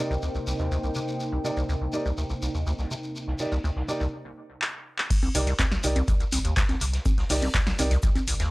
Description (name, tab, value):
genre	acid house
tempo	123 BPM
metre	4/4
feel	straight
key	C minor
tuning	A4 = 440 Hz
part	warm analog pad	sustained chords	0.0-4.1 s	C3 to Eb4	-34 LUFS	equal	lush chorus, sidechain pumping
part	liquid acid bass	riff	0.0-8.5 s	C2 to C3	-28 LUFS	equal	chorus, tube saturation, sidechain pumping
part	dark baby grand piano	stabs	0.0-7.9 s	Eb4 to D5	-32 LUFS	right 2 dB	tape echo
part	warbly tape-like pad	texture	0.0-4.1 s	Eb4 to G5	-36 LUFS	equal	chorus, built-in reverb, sidechain pumping
part	vintage drum kit	drums	0.1-8.5 s	hi-hat, shaker, snare drum	-42 LUFS	equal	sidechain pumping on hats, high-pass filter on hats, low-pass filter on hats, high-pass filter on snare, low-pass filter on snare, sidechain pumping on perc, high-pass filter on perc, low-pass filter on perc, high-pass filter on room, low-pass filter on room
part	shekere	percussion	0.1-8.5 s	none	-38 LUFS	left 2 dB	none
part	electro analog drum machine	drums	4.6-8.5 s	congas, crash cymbal, handclaps, hi-hat, snare drum	-28 LUFS	equal	none
part	electronic kick drum	drums	5.1-8.1 s	none	-25 LUFS	equal	none
part	warm sub bass	bass	5.3-8.5 s	G1 to C2	-27 LUFS	equal	sidechain pumping
room	little or no reverb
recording	dry, gritty hardware recording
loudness	-24 LUFS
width	side -21 dB against mid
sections	0.0-5.1 A section; 5.1-8.5 B section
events	break 4.1-5.1; drum fill 4.6-5.1; drop 5.1-8.5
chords	0.0 Cm7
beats	0.23 0.71 | 1.20 1.69 2.18 2.67 | 3.15 3.64 4.13 4.62 | 5.11 5.59 6.08 6.57 | 7.06 7.54 8.03